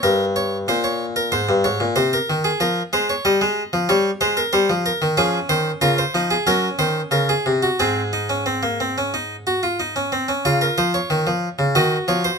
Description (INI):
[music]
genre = classical, baroque-style 3-part fugue for harpsichord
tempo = 93 BPM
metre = 4/4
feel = straight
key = Db major from 5.2 s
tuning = A4 = 441 Hz
[part]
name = harpsichord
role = solo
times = 0.0-12.4 s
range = G2 to F5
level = -17 LUFS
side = equal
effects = none
[sound]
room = little or no reverb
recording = close, detailed microphones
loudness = -17 LUFS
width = side -5 dB against mid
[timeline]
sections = 0.0-10.5 A section; 10.5-12.4 B section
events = none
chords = 0.0 Gdim; 1.3 Ab; 2.6 Db/F (rootless); 3.9 Gdim; 5.2 Db; 6.5 Gb; 7.8 Ab; 10.5 Db; 11.8 Cdim/Eb